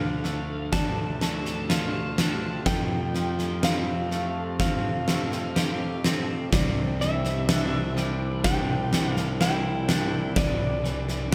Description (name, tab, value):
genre	post-rock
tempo	62 BPM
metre	4/4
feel	straight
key	unclear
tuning	A4 = 441 Hz
part	electric slide guitar	melody	0.0-11.3 s	D5 to A5	-35 LUFS	equal	slapback echo, analog delay
part	sweeping resonant pad	sustained chords	0.0-11.3 s	E3 to A4	-39 LUFS	equal	none
part	felt-muted upright piano	arpeggios	0.0-11.3 s	A4 to F5	-44 LUFS	equal	none
part	twangy electric guitar	arpeggios	0.0-11.3 s	C3 to G4	-39 LUFS	equal	slapback echo, analog delay
part	fuzz fingered electric bass	bass	0.0-11.3 s	C2 to F2	-32 LUFS	equal	overdrive
part	huge arena drum kit	drums	0.2-11.3 s	kick drum, snare drum	-28 LUFS	equal	none
room	moderate lush hall reverb, RT60 3.0 s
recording	big arena sound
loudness	-26 LUFS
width	mono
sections	0.0-11.3 A section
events	none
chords	0.0 Dm; 2.7 Fadd9; 6.5 Cadd9